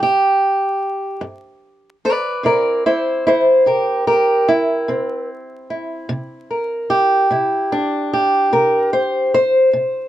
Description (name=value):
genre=acoustic country blues, solo or duo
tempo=49 BPM (dotted quarters)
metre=12/8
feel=straight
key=unclear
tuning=A4 = 439 Hz
part: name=fingerpicked old ladder-braced acoustic guitar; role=solo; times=0.0-10.1 s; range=G2 to D5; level=-15 LUFS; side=equal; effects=none
room=wet booth ambience, RT60 0.2 s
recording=dark, warm production, vinyl crackle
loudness=-14 LUFS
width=side -13 dB against mid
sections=0.0-10.1 A section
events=none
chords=0.0 G; 2.4 C7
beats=0.01 1.23 | 2.44 3.66 4.87 6.09 | 7.30 8.52 9.73